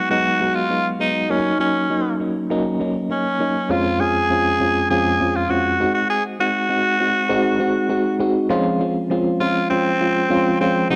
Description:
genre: pop.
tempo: 100 BPM.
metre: 4/4.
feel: straight.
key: Db major.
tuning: A4 = 441 Hz.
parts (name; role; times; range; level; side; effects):
raspy tenor saxophone; melody; 0.0-11.0 s; C4 to Ab4; -22 LUFS; equal; cassette tape.
FM electric piano with tremolo; accompaniment; 0.0-11.0 s; F2 to Gb4; -22 LUFS; equal; cassette tape.
room: moderate spring reverb, RT60 2.0 s.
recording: home recording on cassette.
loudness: -19 LUFS.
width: mono.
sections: 0.0-8.5 A section; 8.5-11.0 B section.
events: none.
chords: 0.0 Abm7; 1.3 Ebm7; 3.7 Dbmaj7/F; 5.8 Ab7; 8.5 Dbmaj7.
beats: 0.10 0.70 | 1.30 1.90 2.50 3.10 | 3.70 4.30 4.90 5.50 | 6.10 6.70 7.30 7.90 | 8.50 9.10 9.70 10.30 | 10.90.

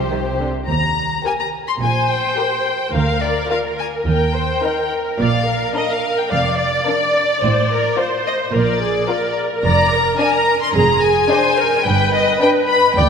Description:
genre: quick classical-period movement for string orchestra.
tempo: 108 BPM.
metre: 4/4.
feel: straight.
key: Eb major.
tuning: A4 = 440 Hz.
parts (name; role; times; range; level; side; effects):
warm symphonic violin section; melody; 0.0-13.1 s; Bb4 to C6; -19 LUFS; left 4 dB; none.
warm symphonic violin section; second line; 0.0-12.8 s; D4 to D5; -24 LUFS; left 3 dB; none.
rich symphonic cello section; bass; 0.0-13.1 s; D2 to C3; -25 LUFS; right 3 dB; none.
warm studio double bass section; bass; 0.0-13.1 s; F1 to Eb2; -24 LUFS; right 3 dB; none.
rich symphonic viola section; accompaniment; 0.1-13.1 s; D3 to D5; -19 LUFS; right 2 dB; none.
room: wet concert hall reverb, RT60 2.5 s.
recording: none.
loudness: -15 LUFS.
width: side -6 dB against mid.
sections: 0.7-13.1 A section.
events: none.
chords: 0.0 C5; 0.7 Eb; 2.9 Bb/D; 4.1 Eb; 5.2 Bb; 7.4 F/A; 8.5 Bb; 9.6 Ddim/F; 11.9 G.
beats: 0.10 | 0.69 1.26 1.82 2.38 | 2.95 3.51 4.07 4.63 | 5.20 5.76 6.32 6.87 | 7.42 7.98 8.54 9.10 | 9.65 10.20 10.75 11.30 | 11.86 12.41 12.96.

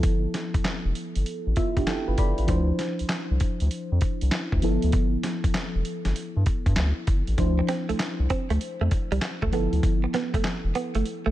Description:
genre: R&B, new jack swing.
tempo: 98 BPM.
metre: 4/4.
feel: swing 66% on 16ths.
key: unclear.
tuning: A4 = 438 Hz.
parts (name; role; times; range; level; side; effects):
mellow FM electric piano; accompaniment; 0.0-11.3 s; F3 to B5; -29 LUFS; equal; chorus, phaser.
round analog bass; bass; 0.0-11.3 s; F1 to G2; -24 LUFS; equal; none.
dusty soul sampler-style drum kit; drums; 0.0-11.2 s; handclaps, hi-hat, kick drum, snare drum; -27 LUFS; equal; none.
direct-recorded clean electric guitar; riff; 7.6-11.3 s; G3 to C4; -30 LUFS; right 6 dB; lush chorus.
room: little or no reverb.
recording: none.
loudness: -23 LUFS.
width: side -14 dB against mid.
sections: 0.0-11.3 A section.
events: FM electric piano fill 1.3-2.5.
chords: 0.0 G13; 2.5 Dm9; 4.6 G13; 7.4 Dm9; 9.5 G13.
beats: | 0.04 0.65 1.26 1.87 | 2.48 3.10 3.71 4.32 | 4.93 5.54 6.16 6.77 | 7.38 7.99 8.61 9.22 | 9.83 10.44 11.05.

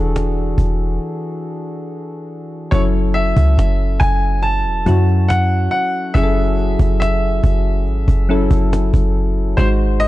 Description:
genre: contemporary R&B.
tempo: 70 BPM.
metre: 4/4.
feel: straight.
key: unclear.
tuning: A4 = 438 Hz.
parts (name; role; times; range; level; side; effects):
soft electric-piano-like synth keys; accompaniment; 0.0-10.1 s; E3 to B#4; -21 LUFS; left 2 dB; chorus.
clean 808-style bass; bass; 0.0-10.1 s; E1 to F#2; -16 LUFS; equal; none.
cajon; drums; 0.2-10.1 s; none; -21 LUFS; equal; vintage 12-bit sampler grit.
clear baby grand piano; melody; 2.7-10.1 s; B#4 to A5; -21 LUFS; equal; none.
room: small room ambience.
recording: dark, warm production.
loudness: -14 LUFS.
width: side -16 dB against mid.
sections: 0.0-2.7 A section; 2.7-10.1 B section.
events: break 1.0-2.7.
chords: 0.0 E9sus4; 2.7 F#m7; 9.6 G#7.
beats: 0.15 1.01 1.86 | 2.72 3.58 4.43 5.29 | 6.15 7.01 7.86 8.72 | 9.58.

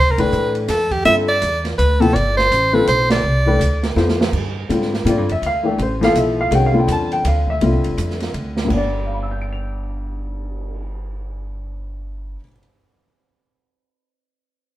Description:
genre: modal jazz.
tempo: 165 BPM.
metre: 3/4.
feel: swing 63% on 8ths.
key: G mixolydian.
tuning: A4 = 435 Hz.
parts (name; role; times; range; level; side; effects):
clear soprano saxophone; melody; 0.0-3.9 s; G4 to E5; -17 LUFS; right 1 dB; none.
upright bass; bass; 0.0-12.3 s; F1 to A2; -21 LUFS; right 1 dB; none.
warm baby grand piano; accompaniment; 0.2-12.6 s; G2 to F7; -19 LUFS; left 2 dB; none.
open jazz drum kit; drums; 0.2-10.8 s; crash cymbal, cymbal swell, hi-hat, kick drum, ride cymbal, snare drum; -26 LUFS; right 3 dB; none.
room: moderate stone room reverb, RT60 1.2 s.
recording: band playing live in one room.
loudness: -15 LUFS.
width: side -14 dB against mid.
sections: 0.0-4.3 A section; 4.3-8.7 B section; 8.7-10.9 C section.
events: band accent 0.1, 3.1; drum fill 4.0-4.3.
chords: 0.0 G9sus4; 8.7 G.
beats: 0.32 0.69 | 1.05 1.41 1.78 | 2.14 2.51 2.87 | 3.24 3.60 3.97 | 4.33 4.70 5.06 | 5.42 5.79 6.15 | 6.52 6.88 7.25 | 7.61 7.98 8.34 | 8.71 9.07 9.43 | 9.80 10.16 10.53.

